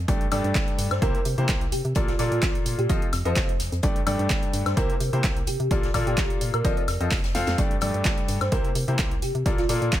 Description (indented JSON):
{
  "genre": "piano house",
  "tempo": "128 BPM",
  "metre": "4/4",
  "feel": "swing 54% on 16ths",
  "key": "G minor",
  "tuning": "A4 = 440 Hz",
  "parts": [
    { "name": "organ-like FM bass", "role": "bass", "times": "0.0-10.0 s", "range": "F1 to C3", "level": "-28 LUFS", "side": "equal", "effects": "sidechain pumping" },
    { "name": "bright concert grand piano", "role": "riff", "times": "0.1-10.0 s", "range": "G2 to F5", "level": "-28 LUFS", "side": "left 2 dB", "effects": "sidechain pumping, ping-pong delay" },
    { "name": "electronic kick drum", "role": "drums", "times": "0.1-10.0 s", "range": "none", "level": "-25 LUFS", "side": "equal", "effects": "overdrive" },
    { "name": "open jazz drum kit", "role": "drums", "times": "0.1-10.0 s", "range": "hi-hat, snare drum", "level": "-40 LUFS", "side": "left 3 dB", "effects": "none" },
    { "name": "punchy analog drum machine", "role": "drums", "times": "0.1-10.0 s", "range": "handclaps, hi-hat, snare drum, woodblock", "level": "-30 LUFS", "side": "left 1 dB", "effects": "overdrive" },
    { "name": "thumb-piano-like synth pluck", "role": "melody", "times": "0.9-9.8 s", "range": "F4 to D5", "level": "-31 LUFS", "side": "right 1 dB", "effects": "ensemble chorus, ping-pong delay" }
  ],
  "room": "small room ambience",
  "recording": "none",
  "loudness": "-22 LUFS",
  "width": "side -12 dB against mid",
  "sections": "0.0-10.0 A section",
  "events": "drum fill 7.3",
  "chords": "0.1 Gsus2; 1.0 C7; 2.0 Bbmaj7; 2.9 F7; 3.8 Gsus2; 4.8 C7; 5.7 Bbmaj7; 6.6 F7; 7.6 Gsus2; 8.5 C7; 9.5 Bbmaj7"
}